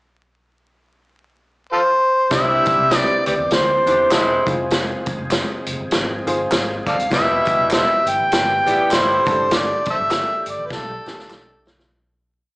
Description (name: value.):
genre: uptempo 1960s-style soul.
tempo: 100 BPM.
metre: 4/4.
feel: swing 59% on 8ths.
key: C major.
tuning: A4 = 441 Hz.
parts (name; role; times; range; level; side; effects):
overdriven harmonica; melody; 1.7-11.7 s; F4 to G5; -17 LUFS; equal; slapback echo.
warm horn section; second line; 2.3-9.4 s; A2 to G4; -24 LUFS; equal; slapback echo.
warm grand piano; accompaniment; 2.3-11.5 s; D4 to D5; -25 LUFS; left 1 dB; slapback echo.
overdriven tonewheel organ; sustained chords; 2.3-11.9 s; D3 to Ab4; -30 LUFS; equal; slow rotary speaker, chorus vibrato.
vintage muted fingered electric bass; bass; 2.3-11.8 s; Eb1 to E2; -32 LUFS; equal; none.
vintage drum kit; drums; 2.3-11.9 s; hi-hat, kick drum, snare drum; -22 LUFS; equal; none.
tambourine and handclaps; percussion; 2.3-11.8 s; none; -32 LUFS; equal; none.
room: light reverb, small room reverb.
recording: live gig heard through the venue's PA, club reverb, vinyl crackle, small speaker sound.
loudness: -15 LUFS.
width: side -25 dB against mid.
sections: 0.0-2.3 pickup bar; 2.3-11.9 A section.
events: fade-out 9.5-11.9; drum fill 10.7-11.9.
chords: 0.0 N.C.; 2.3 Cadd9; 4.4 Fm; 7.1 Em; 9.2 Gsus2.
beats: 0.52 1.11 1.71 | 2.31 2.91 3.51 4.11 | 4.71 5.31 5.91 6.51 | 7.12 7.72 8.32 8.91 | 9.51 10.11 10.71 11.31.